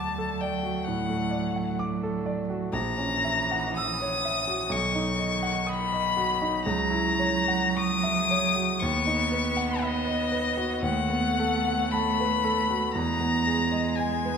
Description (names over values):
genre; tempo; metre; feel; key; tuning
classical, slow romantic movement for piano trio; 52-67 BPM; 4/4; rubato; B major; A4 = 440 Hz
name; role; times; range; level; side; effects
rich violin; melody; 0.0-14.4 s; D#5 to D#6; -27 LUFS; left 5 dB; none
rich cello; second line; 0.0-14.4 s; D#3 to B3; -31 LUFS; right 6 dB; none
warm concert grand piano; accompaniment; 0.0-14.4 s; A#1 to E6; -28 LUFS; right 1 dB; none
room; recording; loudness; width
wet scoring stage reverb, RT60 1.8 s; minimal, uncompressed stereo recording; -24 LUFS; side -6 dB against mid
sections
0.0-14.4 A section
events
none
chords
0.0 D; 2.7 F#7/A#; 4.7 B; 6.7 F#7/C#; 8.8 B/D#; 10.8 B7/D#; 13.0 Emaj7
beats
0.86 1.79 | 2.74 3.77 4.72 5.68 | 6.67 7.77 8.81 9.84 | 10.84 11.94 12.95 13.99